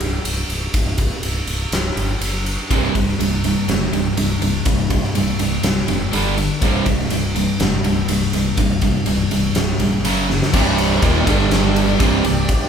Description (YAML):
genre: hard rock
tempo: 122 BPM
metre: 4/4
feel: straight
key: unclear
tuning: A4 = 445 Hz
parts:
  - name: fingered electric bass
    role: bass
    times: 0.0-12.5 s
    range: C1 to Bb1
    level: -24 LUFS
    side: equal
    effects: none
  - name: big rock drum kit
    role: drums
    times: 0.0-12.6 s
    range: crash cymbal, kick drum, ride cymbal, snare drum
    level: -20 LUFS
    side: equal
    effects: none
  - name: crunchy overdriven guitar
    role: riff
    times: 2.7-12.4 s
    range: C2 to G3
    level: -20 LUFS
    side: right 6 dB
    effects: none
  - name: high-gain distorted guitar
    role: riff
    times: 2.7-12.4 s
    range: C2 to G3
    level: -22 LUFS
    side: left 6 dB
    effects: distortion
  - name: tonewheel organ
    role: sustained chords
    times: 10.5-12.7 s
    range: G3 to D5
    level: -26 LUFS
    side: left 1 dB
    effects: slow rotary speaker, overdrive, chorus vibrato
room: moderate large studio reverb, RT60 1.1 s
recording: band playing live in one room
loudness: -16 LUFS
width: side -7 dB against mid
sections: 0.0-10.5 A section; 10.5-12.7 B section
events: drum fill 10.3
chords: 0.0 C5; 2.2 N.C.; 2.7 C5; 6.1 G5; 6.6 C5; 10.0 F#5; 10.5 C5; 11.3 G5; 12.0 C5